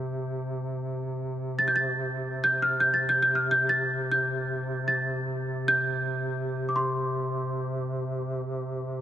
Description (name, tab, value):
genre	caucasian folk, Caucasian lament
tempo	free time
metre	none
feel	none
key	unclear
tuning	A4 = 439 Hz
part	worn celesta	melody	0.0-9.0 s	C6 to A6	-25 LUFS	equal	none
part	warm duduk	drone	0.0-9.0 s	C3	-30 LUFS	equal	none
room	wet cathedral reverb, RT60 5.3 s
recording	none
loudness	-25 LUFS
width	side -11 dB against mid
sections	0.0-9.0 A section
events	none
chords	none